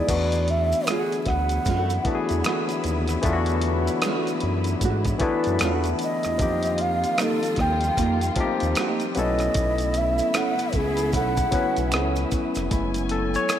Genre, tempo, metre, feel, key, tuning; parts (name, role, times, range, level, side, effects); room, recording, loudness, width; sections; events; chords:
R&B, neo-soul; 76 BPM; 4/4; swing 61% on 16ths; A4 = 440 Hz
breathy bright round clay ocarina; melody; 0.0-11.9 s; G#4 to G5; -26 LUFS; right 1 dB; analog delay
barky tine electric piano; accompaniment; 0.0-13.6 s; E3 to C#5; -26 LUFS; left 4 dB; overdrive
dark studio string section; sustained chords; 0.1-13.6 s; C#3 to G#5; -32 LUFS; left 1 dB
smooth gliding synth bass; bass; 0.1-13.4 s; E#1 to G#2; -26 LUFS; equal
dusty soul sampler-style drum kit; drums; 0.1-13.6 s; crash cymbal, hi-hat, kick drum, rim click; -28 LUFS; equal
maracas and finger snaps; percussion; 0.1-13.6 s; -39 LUFS; right 6 dB
nylon-string guitar; second line; 0.9-12.2 s; A3 to A4; -32 LUFS; right 6 dB; lush chorus
moderate plate reverb, RT60 3.5 s; dreamy mix soaked in reverb; -21 LUFS; side -10 dB against mid
0.1-12.7 A section
0.1 E9sus4; 6.4 F9sus4; 9.2 B9sus4; 12.7 F#m11